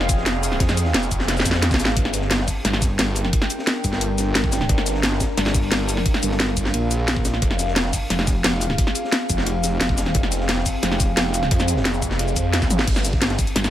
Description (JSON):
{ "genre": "dark technical drum and bass", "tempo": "176 BPM", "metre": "4/4", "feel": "straight", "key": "G phrygian", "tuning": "A4 = 439 Hz", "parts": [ { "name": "deep dark ambient pad", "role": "sustained chords", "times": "0.0-13.7 s", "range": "C4 to G5", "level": "-27 LUFS", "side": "equal", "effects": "chorus, built-in reverb, sidechain pumping" }, { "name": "snarling distorted saw bass", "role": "bass", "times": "0.0-2.5, 4.7-5.2, 7.4-7.9, 10.1-13.4 s", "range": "F1 to F2", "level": "-23 LUFS", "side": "equal", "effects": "distortion, overdrive, sidechain pumping" }, { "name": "drum and bass drum kit", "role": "drums", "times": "0.0-13.7 s", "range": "crash cymbal, hi-hat, shaker, snare drum, toms", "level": "-22 LUFS", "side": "equal", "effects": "none" }, { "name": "crunchy breakbeat drum kit", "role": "drums", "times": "0.1-13.6 s", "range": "hi-hat, ride cymbal, snare drum", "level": "-32 LUFS", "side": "equal", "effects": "none" }, { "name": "electronic kick drum", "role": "drums", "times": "0.1-13.5 s", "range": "none", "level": "-22 LUFS", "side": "equal", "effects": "none" }, { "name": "metallic wobble bass", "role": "bass", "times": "2.6-11.5, 13.6-13.7 s", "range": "F1 to Bb1", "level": "-23 LUFS", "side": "equal", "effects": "distortion, chorus" } ], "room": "little or no reverb", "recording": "none", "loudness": "-18 LUFS", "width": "side -12 dB against mid", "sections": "0.0-12.9 A section", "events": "drop 0.0-12.9; drum fill 1.3-2.0, 12.6", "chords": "0.0 Fm; 2.0 Gm; 7.4 Fm; 12.9 Gm" }